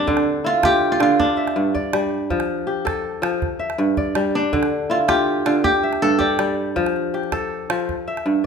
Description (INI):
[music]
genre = west african traditional, West African string and xylophone music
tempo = 108 BPM (dotted quarters)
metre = 12/8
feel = straight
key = unclear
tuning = A4 = 440 Hz
[part]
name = kora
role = melody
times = 0.0-7.6 s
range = D4 to E5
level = -20 LUFS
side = right 1 dB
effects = none
[part]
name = kora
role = arpeggios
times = 0.0-8.5 s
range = G2 to G5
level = -20 LUFS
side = equal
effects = none
[part]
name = calabash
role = percussion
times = 0.1-8.3 s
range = none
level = -28 LUFS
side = right 5 dB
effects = none
[sound]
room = moderate recital hall reverb, RT60 1.4 s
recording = minimal, uncompressed stereo recording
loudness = -18 LUFS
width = side -6 dB against mid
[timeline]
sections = 0.1-8.5 A section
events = none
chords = 0.1 Dm; 1.2 G5; 2.3 F; 3.4 G5; 4.5 Dm; 5.6 G5; 6.8 F; 7.9 G5